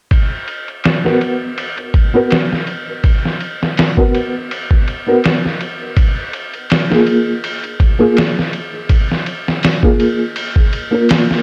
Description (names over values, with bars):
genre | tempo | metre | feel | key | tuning
trip hop | 82 BPM | 4/4 | swing 55% on 16ths | unclear | A4 = 445 Hz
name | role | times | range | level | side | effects
trip hop sampler-style drum kit | drums | 0.1-11.4 s | hi-hat, kick drum, ride cymbal, snare drum | -17 LUFS | equal | overdrive, low-pass filter on cymbals, low-pass filter on kick, low-pass filter on snare, low-pass filter on hats
felt-muted upright piano | accompaniment | 1.0-11.4 s | A#3 to A#4 | -18 LUFS | equal | tremolo, low-pass filter
room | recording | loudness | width
light reverb | none | -15 LUFS | mono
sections
0.1-11.4 A section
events
none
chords
0.1 B5; 6.0 A#5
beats
| 0.12 0.85 1.58 2.31 | 3.04 3.78 4.51 5.24 | 5.97 6.70 7.43 8.17 | 8.90 9.63 10.36 11.09